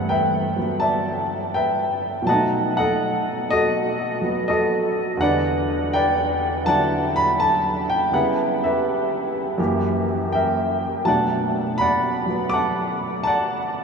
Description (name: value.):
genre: solo jazz.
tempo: 82 BPM.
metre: 4/4.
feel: swing 68% on 8ths.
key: unclear.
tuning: A4 = 439 Hz.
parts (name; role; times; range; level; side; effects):
warm baby grand piano; solo; 0.0-13.8 s; E2 to D6; -19 LUFS; equal; none.
room: wet huge ambient reverb, RT60 8.1 s.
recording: in a vast, echoing space, small room reverb.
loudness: -19 LUFS.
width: side -5 dB against mid.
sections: 0.0-13.8 A section.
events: none.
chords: 0.0 G69; 2.3 B7; 5.2 Em9; 8.1 C#m7b5; 9.6 F#7b9; 11.1 Bm7.